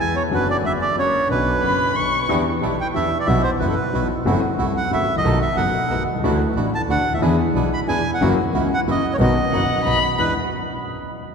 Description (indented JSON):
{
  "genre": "tango",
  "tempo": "183 BPM",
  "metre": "3/4",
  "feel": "rubato",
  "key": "unclear",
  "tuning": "A4 = 440 Hz",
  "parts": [
    { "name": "bandoneon", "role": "melody", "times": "0.0-10.3 s", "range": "A4 to B5", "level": "-23 LUFS", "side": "right 3 dB", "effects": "none" },
    { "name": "dark concert grand piano", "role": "accompaniment", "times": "0.0-10.3 s", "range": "F#1 to G#4", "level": "-22 LUFS", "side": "left 2 dB", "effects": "none" },
    { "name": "bandoneon", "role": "stabs", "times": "0.0-10.3 s", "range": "A3 to B4", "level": "-28 LUFS", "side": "right 3 dB", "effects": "none" },
    { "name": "warm double bass", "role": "bass", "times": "0.0-10.3 s", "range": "F#1 to E2", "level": "-24 LUFS", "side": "right 1 dB", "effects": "none" },
    { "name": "warm violin", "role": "second line", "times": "1.6-2.3, 9.5-10.3 s", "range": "F#5 to C#6", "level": "-24 LUFS", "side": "left 4 dB", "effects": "none" }
  ],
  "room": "wet cathedral reverb, RT60 4.5 s",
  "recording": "recorded in a church or concert hall",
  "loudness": "-17 LUFS",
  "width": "side -6 dB against mid",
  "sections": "0.0-2.3 A section; 2.3-10.2 B section",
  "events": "none",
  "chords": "0.3 Bm/F#; 1.0 F#; 1.3 Bmadd9; 2.3 Em7; 3.3 Bsus4; 4.3 F#m7b5; 5.2 B7; 6.2 Dadd9; 7.2 E7; 8.2 F#7; 9.2 B; 10.2 E7"
}